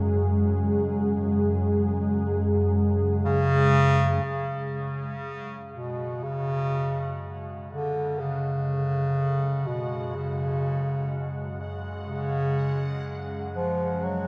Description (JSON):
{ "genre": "dark ambient drone", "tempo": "61 BPM", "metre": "4/4", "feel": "straight", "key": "unclear", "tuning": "A4 = 436 Hz", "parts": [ { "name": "sweeping resonant pad", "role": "sustained chords", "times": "0.0-14.3 s", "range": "G#3 to G#4", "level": "-33 LUFS", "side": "equal", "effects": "chorus" }, { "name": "organ-like drone", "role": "drone", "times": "0.0-14.3 s", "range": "F#2 to C#3", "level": "-32 LUFS", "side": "equal", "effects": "ensemble chorus, built-in reverb" }, { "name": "warm bass clarinet", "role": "melody", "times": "3.2-14.3 s", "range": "B2 to F#3", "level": "-28 LUFS", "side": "equal", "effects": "tape echo" }, { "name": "bubbling stepped-filter texture", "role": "texture", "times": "5.7-14.3 s", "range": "G#3 to F#5", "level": "-44 LUFS", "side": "equal", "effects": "chorus, built-in reverb" } ], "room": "wet cathedral reverb, RT60 6.9 s", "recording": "none", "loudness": "-26 LUFS", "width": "mono", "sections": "0.0-4.2 A section; 4.2-14.3 B section", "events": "fade-in on synth drone 4.2-14.3; fade-in on analog synth pad 4.2-14.3; fade-in on synth texture 4.2-14.3", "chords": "0.0 F#sus2" }